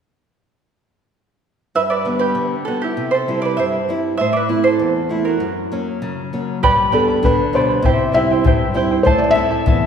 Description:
andean folk, Andean ensemble; 98 BPM; 2/4; straight; A4 = 438 Hz
charango; accompaniment; 1.8-9.9 s; E4 to B5; -19 LUFS; right 2 dB
nylon-string guitar; accompaniment; 1.8-9.9 s; E2 to E4; -20 LUFS; right 1 dB
bombo; percussion; 6.6-9.8 s; -19 LUFS; left 2 dB
felt-muted upright piano; melody; 6.9-9.9 s; A4 to E5; -18 LUFS; left 2 dB
wet scoring stage reverb, RT60 2.0 s; recorded in a church or concert hall; -15 LUFS; side -7 dB against mid
1.7-6.6 A section; 6.6-9.9 B section
charango solo 1.7-6.6
1.7 G; 3.0 C; 4.2 Am; 5.4 F#; 6.6 G; 7.8 C; 9.1 Am
| 1.75 2.36 | 2.97 3.58 | 4.19 4.80 | 5.41 6.02 | 6.63 7.24 | 7.84 8.45 | 9.06 9.67

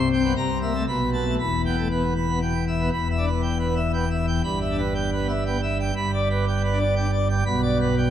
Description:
classical, organ toccata; 118 BPM; 3/4; straight; E minor; A4 = 440 Hz
pipe organ, plenum; solo; 0.0-8.1 s; E1 to B5; -21 LUFS; equal
wet church reverb, RT60 3.8 s; -21 LUFS; side -10 dB against mid
0.0-2.9 A section; 2.9-8.1 B section
0.3 C7; 0.9 Asus2/B; 1.4 Em; 4.4 Em/G; 6.0 G; 7.5 G/B
0.35 0.86 | 1.37 1.89 2.41 | 2.92 3.43 3.94 | 4.45 4.96 5.46 | 5.96 6.47 6.97 | 7.47 7.97

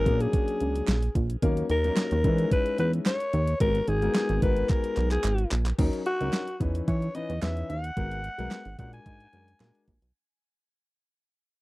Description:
early-eighties boogie funk; 110 BPM; 4/4; straight; G# minor; A4 = 441 Hz
breathy alto saxophone; melody; 0.0-9.8 s; F#4 to G#5; -29 LUFS; left 1 dB
warm grand piano; accompaniment; 0.0-9.9 s; E3 to B4; -32 LUFS; left 3 dB
chorused synth bass; bass; 0.0-10.1 s; G#1 to E3; -27 LUFS; equal
detuned 8-bit digital drum machine; drums; 0.1-10.1 s; crash cymbal, handclaps, hi-hat, kick drum, snare drum; -28 LUFS; right 1 dB; overdrive
group handclap; percussion; 0.9-9.7 s; -40 LUFS; right 9 dB
little or no reverb; dry, close 1970s-style studio recording; -24 LUFS; side -20 dB against mid
0.0-5.8 A section; 5.8-10.2 B section
drum fill 4.7-5.8; fade-out 5.8-10.2
0.1 A#7alt; 1.4 D#m7; 2.2 C#m9/E; 3.6 G#m9; 5.8 D#m7; 6.6 C#m9/E; 8.0 G#m9; 8.8 A#aug7
0.33 0.88 | 1.42 1.97 2.51 3.06 | 3.60 4.15 4.70 5.24 | 5.79 6.33 6.88 7.42 | 7.97 8.51 9.06 9.61

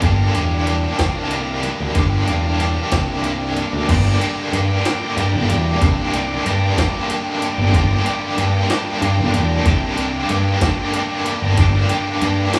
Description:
psychedelic rock; 62 BPM (dotted quarters); 6/8; straight; G minor; A4 = 440 Hz
bright tonewheel organ; sustained chords; 0.0-12.6 s; D5 to Bb5; -32 LUFS; equal
biting overdriven guitar; riff; 0.0-12.6 s; G2 to G4; -22 LUFS; equal; tremolo
fuzz picked electric bass; bass; 0.0-12.5 s; E1 to G2; -22 LUFS; equal; overdrive
jungle sampler-style drum kit; drums; 0.0-12.6 s; crash cymbal, hi-hat, kick drum, snare drum; -22 LUFS; equal; overdrive
wet large studio reverb, RT60 1.3 s; band playing live in one room, small room ambience; -18 LUFS; mono
0.0-3.9 A section; 3.9-12.6 B section
0.0 Gm
| 0.03 1.00 | 1.96 2.93 | 3.89 4.85 | 5.81 6.78 | 7.74 8.70 | 9.66 10.62 | 11.58 12.54

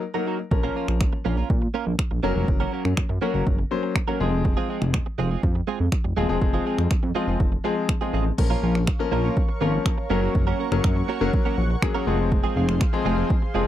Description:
dance-pop; 122 BPM; 4/4; straight; Bb minor; A4 = 440 Hz
direct-recorded clean electric guitar; riff; 0.0-13.7 s; Ab3 to Bb4; -29 LUFS; right 8 dB; analog chorus
clear baby grand piano; accompaniment; 0.1-13.7 s; F3 to C5; -26 LUFS; left 6 dB; sidechain pumping
chorused synth bass; bass; 0.5-13.7 s; Eb1 to Bb2; -24 LUFS; equal; sidechain pumping
deep house drum kit; drums; 0.5-13.4 s; crash cymbal, finger snaps, kick drum; -23 LUFS; equal
lush unison pad; sustained chords; 9.0-13.7 s; Ab4 to Db6; -33 LUFS; right 2 dB; chorus, sidechain pumping
little or no reverb; dry, close 1970s-style studio recording; -21 LUFS; side -12 dB against mid
0.0-8.4 A section; 8.4-13.7 B section
0.0 Ebm; 0.5 Bbm; 2.2 Gb; 4.2 Fm; 8.4 Bbm; 10.1 Gb; 12.1 Fm
0.02 | 0.51 1.01 1.50 1.99 | 2.48 2.97 3.46 3.96 | 4.45 4.94 5.43 5.92 | 6.42 6.91 7.40 7.89 | 8.38 8.88 9.37 9.86 | 10.35 10.84 11.33 11.82 | 12.32 12.81 13.30

